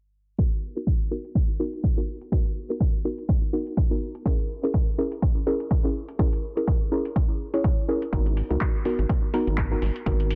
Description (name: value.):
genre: deep house.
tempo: 124 BPM.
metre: 4/4.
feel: swing 56% on 16ths.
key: unclear.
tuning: A4 = 443 Hz.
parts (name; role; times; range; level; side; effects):
deep mellow chord stab; stabs; 0.4-10.3 s; B3 to C#5; -30 LUFS; equal; chorus, sidechain pumping, tape echo.
electronic kick drum; drums; 0.4-10.2 s; none; -26 LUFS; equal; none.
punchy analog drum machine; drums; 0.4-10.4 s; handclaps, hi-hat; -40 LUFS; equal; none.
rubbery square bass; bass; 8.1-10.4 s; G#1 to C#2; -28 LUFS; equal; sidechain pumping.
room: light reverb.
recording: dense, heavily limited modern master, low-pass filter, faint mains hum.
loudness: -25 LUFS.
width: mono.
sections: 0.4-10.4 A section.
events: filter sweep on synth stab 0.4-10.4; filter sweep 0.4-10.4.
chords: 0.4 Bmaj7; 4.3 A#m7b5; 8.1 G#m9.